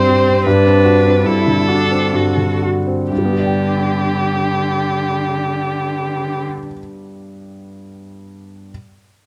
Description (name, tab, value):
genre	classical, slow romantic movement for piano trio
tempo	58-79 BPM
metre	3/4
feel	rubato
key	G major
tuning	A4 = 438 Hz
part	rich violin	melody	0.0-6.5 s	G4 to C5	-20 LUFS	equal	none
part	clear cello	second line	0.0-6.5 s	D3 to F#4	-24 LUFS	equal	none
part	clear grand piano	accompaniment	0.0-8.7 s	G2 to G5	-20 LUFS	equal	none
room	moderate recital hall reverb, RT60 1.3 s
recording	close, detailed microphones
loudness	-16 LUFS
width	mono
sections	0.0-3.1 A section; 3.1-8.7 B section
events	slowing down 0.0-3.1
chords	0.5 D7/G; 3.1 G